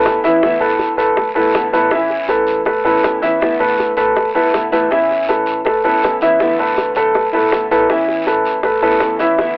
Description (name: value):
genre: latin, Cuban son and guajira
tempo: 161 BPM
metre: 4/4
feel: straight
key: A major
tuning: A4 = 440 Hz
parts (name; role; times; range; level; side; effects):
- nylon-string guitar; accompaniment; 0.0-9.6 s; D3 to E4; -19 LUFS; left 1 dB; cassette tape
- warm concert grand piano; arpeggios; 0.0-9.5 s; E3 to E5; -14 LUFS; equal; cassette tape
- upright bass; bass; 0.0-9.6 s; A1 to A2; -41 LUFS; equal; transformer saturation
- bongos; percussion; 0.1-9.6 s; none; -20 LUFS; left 1 dB; none
- guiro; percussion; 0.1-9.6 s; none; -30 LUFS; right 1 dB; none
room: light reverb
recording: home recording on cassette, telephone sound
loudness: -12 LUFS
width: side -27 dB against mid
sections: 0.0-9.6 A section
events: none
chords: 0.4 E7sus4; 1.9 Aadd9; 3.4 E7sus4; 4.9 Aadd9; 6.4 E7sus4; 7.9 Aadd9